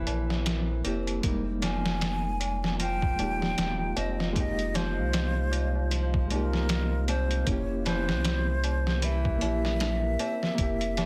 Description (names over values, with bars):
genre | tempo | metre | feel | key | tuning
trip hop | 77 BPM | 4/4 | swing 58% on 16ths | F minor | A4 = 440 Hz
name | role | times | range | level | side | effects
mellow hollow concert flute | melody | 0.0-11.1 s | Bb4 to Ab5 | -36 LUFS | equal | tape echo
reed electric piano | accompaniment | 0.0-11.1 s | G3 to G4 | -37 LUFS | equal | tremolo
deep dark ambient pad | sustained chords | 0.0-11.1 s | F4 to C6 | -45 LUFS | equal | chorus, built-in reverb
nylon-string guitar | arpeggios | 0.0-11.1 s | E3 to C4 | -40 LUFS | equal | tape echo
soft dub sub bass | bass | 0.0-11.1 s | Eb1 to C2 | -32 LUFS | equal | none
trip hop sampler-style drum kit | drums | 0.1-11.1 s | hi-hat, kick drum, snare drum | -33 LUFS | equal | overdrive
tabla | percussion | 0.1-11.1 s | none | -45 LUFS | equal | none
room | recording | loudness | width
digital ambience | dense, heavily limited modern master, vinyl crackle | -28 LUFS | mono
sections
0.0-11.1 A section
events
none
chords
0.0 C7b9; 1.2 Fm11; 7.5 C7b9/F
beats
0.46 | 1.24 2.02 2.79 3.57 | 4.35 5.13 5.91 6.69 | 7.47 8.25 9.03 9.81 | 10.59